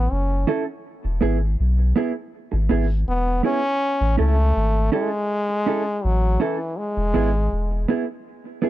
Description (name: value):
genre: roots reggae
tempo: 81 BPM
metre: 4/4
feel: straight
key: unclear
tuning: A4 = 441 Hz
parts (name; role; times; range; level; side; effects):
- bright trombone; melody; 0.0-7.9 s; E3 to C#4; -24 LUFS; left 1 dB; none
- warm sub bass; bass; 0.0-7.9 s; E1 to C#2; -20 LUFS; equal; none
- mellow electric guitar; accompaniment; 0.5-8.7 s; B3 to A4; -24 LUFS; right 4 dB; none
room: small room ambience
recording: dry, close 1970s-style studio recording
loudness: -19 LUFS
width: side -14 dB against mid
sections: 0.0-3.8 A section; 3.8-8.7 B section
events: trombone solo 0.0-3.8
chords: 0.0 A; 0.8 E; 3.8 A; 6.8 E